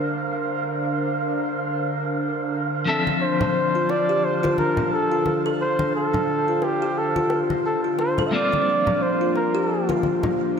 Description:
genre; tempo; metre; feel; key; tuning
organic downtempo; 88 BPM; 4/4; swing 58% on 16ths; D minor; A4 = 440 Hz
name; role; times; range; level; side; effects
clean electric guitar; accompaniment; 0.0-10.6 s; F3 to E5; -28 LUFS; left 4 dB; tremolo, digital delay
airy breathy pad; sustained chords; 0.0-10.6 s; D3 to A5; -27 LUFS; right 1 dB; chorus
electronic cabasa and hi-hat; drums; 0.0-10.6 s; none; barely audible; none; none
wind-like tuned noise texture; texture; 0.0-10.6 s; F5; -31 LUFS; right 3 dB; built-in reverb
trumpet with bucket mute; melody; 2.9-10.0 s; G4 to E5; -23 LUFS; right 1 dB; digital delay
kalimba; arpeggios; 3.1-10.6 s; D4 to A4; -25 LUFS; left 2 dB; digital delay
congas and bongos; percussion; 3.1-10.3 s; none; -30 LUFS; left 2 dB; none
room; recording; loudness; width
wet lush hall reverb, RT60 2.0 s, studio reverb; bright 1980s-style digital production; -20 LUFS; side -6 dB against mid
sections
0.0-10.6 A section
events
none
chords
0.0 C9sus4; 2.9 Dm7; 8.3 C9sus4

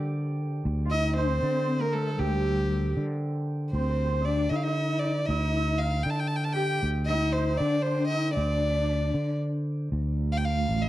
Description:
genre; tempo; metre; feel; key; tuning
Persian modal ensemble; 78 BPM (dotted quarters); 6/8; straight; D dastgah shur; A4 = 440 Hz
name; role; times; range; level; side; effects
santur; second line; 0.0-10.8 s; G4 to G5; -38 LUFS; right 9 dB; none
sustaining fretless electric bass; bass; 0.0-10.9 s; A1 to D3; -27 LUFS; equal; none
dark studio cello section; second line; 0.8-9.4 s; G3 to G4; -32 LUFS; left 3 dB; none
rich violin; melody; 0.9-10.9 s; G4 to A5; -30 LUFS; equal; slapback echo
muted cello; drone; 9.9-10.9 s; D2; -33 LUFS; right 8 dB; stereo widening
room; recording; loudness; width
little or no reverb; dry, close 1970s-style studio recording; -25 LUFS; side -15 dB against mid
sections
0.0-9.9 A section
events
none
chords
none

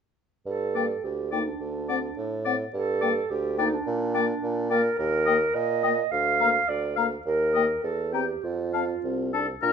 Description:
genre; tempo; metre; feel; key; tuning
quick classical-period movement for wind quintet; 106 BPM; 2/4; straight; G minor; A4 = 439 Hz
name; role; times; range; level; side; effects
dark clarinet; accompaniment; 0.5-9.7 s; D4 to F5; -27 LUFS; right 3 dB; none
mellow bassoon; bass; 0.5-9.7 s; C2 to Bb2; -29 LUFS; right 2 dB; none
clear oboe; second line; 0.7-9.7 s; A4 to G5; -29 LUFS; left 7 dB; none
mellow hollow concert flute; melody; 0.8-9.7 s; F#5 to Bb5; -33 LUFS; left 14 dB; none
mellow French horn; accompaniment; 0.8-9.7 s; Bb3 to D4; -33 LUFS; left 5 dB; none
room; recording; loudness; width
moderate large studio reverb, RT60 1.3 s; nothing above 7.7 kHz; -23 LUFS; side -6 dB against mid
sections
0.5-9.6 A section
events
none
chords
0.5 Gm; 1.6 D7(no3); 2.7 Gm; 3.9 Gm/Bb (rootless); 5.0 Eb5; 6.1 Bb/D; 7.3 Eb5; 7.8 C/E; 8.4 F

